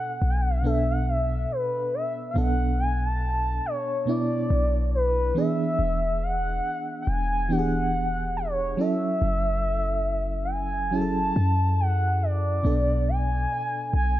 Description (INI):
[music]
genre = contemporary R&B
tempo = 70 BPM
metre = 4/4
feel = swing 58% on 16ths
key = B dorian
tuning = A4 = 438 Hz
[part]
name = gliding portamento lead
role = melody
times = 0.0-14.2 s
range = B4 to A5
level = -27 LUFS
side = equal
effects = chorus, digital delay
[part]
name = mellow FM electric piano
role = accompaniment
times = 0.0-14.2 s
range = B2 to A4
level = -29 LUFS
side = right 2 dB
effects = chorus, tremolo
[part]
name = warm 808-style bass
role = bass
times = 0.2-14.2 s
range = E1 to F#2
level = -25 LUFS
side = equal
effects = none
[sound]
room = digital ambience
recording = none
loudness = -23 LUFS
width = side -14 dB against mid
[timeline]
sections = 0.0-14.2 A section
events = none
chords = 0.0 Bm7; 5.4 E7; 8.8 F#m7; 12.6 Bm7